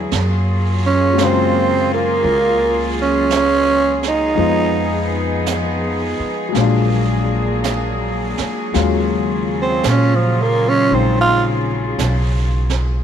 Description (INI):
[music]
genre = jazz ballad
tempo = 56 BPM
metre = 4/4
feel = swing 68% on 8ths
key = unclear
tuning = A4 = 440 Hz
[part]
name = warm concert grand piano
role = accompaniment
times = 0.0-13.0 s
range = Db3 to F#4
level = -23 LUFS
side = left 12 dB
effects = none
[part]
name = warm studio cello section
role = sustained chords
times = 0.0-13.0 s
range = Db3 to G#4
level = -22 LUFS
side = left 1 dB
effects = none
[part]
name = upright bass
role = bass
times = 0.0-13.0 s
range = Bb1 to Bb2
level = -20 LUFS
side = equal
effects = none
[part]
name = jazz brush drum kit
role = drums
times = 0.1-13.0 s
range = brushed snare drum, hi-hat, snare drum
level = -27 LUFS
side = right 10 dB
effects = none
[part]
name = growling tenor saxophone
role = melody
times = 0.9-11.4 s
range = F3 to F4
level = -16 LUFS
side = right 4 dB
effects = none
[sound]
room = light reverb, studio reverb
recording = 1960s-style stereo with parts hard left and right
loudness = -14 LUFS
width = side -8 dB against mid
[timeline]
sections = 0.0-13.0 A section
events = tenor saxophone solo 0.0-13.0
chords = 0.1 Gbmaj9; 4.4 Fm7b5; 6.6 Bb7b13; 8.7 Ebm11